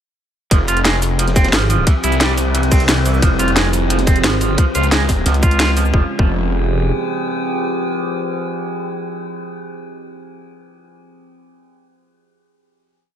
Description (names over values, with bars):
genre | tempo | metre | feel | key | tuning
dark technical drum and bass | 177 BPM | 4/4 | straight | F harmonic minor | A4 = 439 Hz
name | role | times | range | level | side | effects
metallic inharmonic drone | sustained chords | 1.1-9.4 s | F3 to Ab4 | -22 LUFS | equal | chorus, built-in reverb, phaser, vintage 12-bit sampler grit, sidechain pumping
clean electric guitar | arpeggios | 0.5-6.3 s | E3 to F4 | -21 LUFS | right 3 dB | sidechain pumping, ping-pong delay
phased detuned saw bass | bass | 0.5-6.9 s | F1 to Db2 | -17 LUFS | equal | phaser, overdrive
crunchy breakbeat drum kit | drums | 0.5-5.8 s | hi-hat, ride cymbal, snare drum | -28 LUFS | equal | none
drum and bass drum kit | drums | 0.5-5.9 s | cabasa, hi-hat, snare drum | -18 LUFS | equal | overdrive
electronic kick drum | drums | 0.5-6.3 s | none | -14 LUFS | equal | overdrive
growling FM bass | bass | 5.3-5.9 s | Db2 | -16 LUFS | equal | none
room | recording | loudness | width
small room ambience | none | -14 LUFS | side -9 dB against mid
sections
0.5-5.9 drop; 5.9-8.6 final chord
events
drop 0.5-5.9; band accent 5.6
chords
0.5 Fm; 1.9 C; 3.2 Fm; 4.6 Db; 5.9 Fm